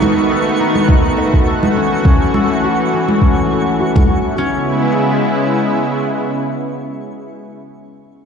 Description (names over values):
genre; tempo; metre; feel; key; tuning
sunset chillout; 103 BPM; 4/4; swing 55% on 16ths; E major; A4 = 440 Hz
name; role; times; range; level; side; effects
lush unison pad; sustained chords; 0.0-7.5 s; C#3 to F#4; -16 LUFS; equal; chorus
concert harp; arpeggios; 0.0-7.3 s; C#4 to D#5; -20 LUFS; left 2 dB; low-pass filter, tape echo
shaker; drums; 0.0-4.4 s; none; -49 LUFS; right 5 dB; none
congas; percussion; 0.0-4.1 s; none; -20 LUFS; equal; none
twinkling granular texture; texture; 0.0-4.4 s; C#6; -28 LUFS; right 3 dB; built-in reverb
electronic kick drum; drums; 0.9-4.1 s; none; -12 LUFS; equal; none
room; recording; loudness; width
moderate concert hall reverb, RT60 2.3 s; played on a big sound system in a bare room, large studio reverb, nothing above 10.8 kHz; -12 LUFS; side -6 dB against mid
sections
0.0-4.4 A section; 4.4-6.7 B section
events
none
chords
0.0 B7; 1.8 F#m7; 4.4 E6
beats
0.30 0.89 1.47 | 2.05 2.63 3.21 3.80 | 4.38 4.96 5.54 6.13